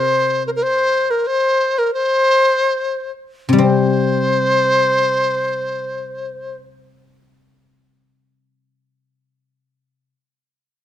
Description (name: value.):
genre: chinese traditional, Chinese chamber ensemble.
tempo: 63-95 BPM.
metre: 2/4.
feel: rubato.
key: unclear.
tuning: A4 = 441 Hz.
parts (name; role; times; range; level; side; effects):
large dizi; melody; 0.0-6.6 s; Bb4 to C5; -16 LUFS; left 1 dB; none.
guzheng; accompaniment; 0.0-0.6, 3.5-10.1 s; C3 to C4; -18 LUFS; left 3 dB; none.
room: light reverb.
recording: close, detailed microphones.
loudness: -14 LUFS.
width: side -10 dB against mid.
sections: 0.0-3.6 A section; 3.6-7.3 B section.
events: slowing down 0.6-3.6.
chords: none.